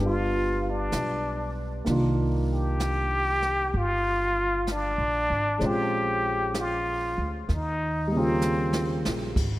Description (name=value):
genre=jazz ballad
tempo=64 BPM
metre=4/4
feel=swing 68% on 8ths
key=Eb major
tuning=A4 = 441 Hz
part: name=warm concert grand piano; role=accompaniment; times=0.0-9.4 s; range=Db3 to F4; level=-29 LUFS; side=equal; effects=none
part: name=upright bass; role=bass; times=0.0-9.6 s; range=G1 to Eb2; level=-29 LUFS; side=equal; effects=none
part: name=trumpet with plunger mute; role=melody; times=0.1-9.1 s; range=C4 to G4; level=-27 LUFS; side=left 1 dB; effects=none
part: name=jazz brush drum kit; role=drums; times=0.9-9.6 s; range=brushed snare drum, hi-hat, kick drum, ride cymbal, snare drum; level=-34 LUFS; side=equal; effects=none
room=moderate lush hall reverb, RT60 2.6 s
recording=rough home demo mix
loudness=-24 LUFS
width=side -16 dB against mid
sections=0.0-9.6 A section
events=drum fill 8.4-9.4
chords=0.0 G7; 1.9 Cm11; 5.6 Bbm7; 7.5 Eb7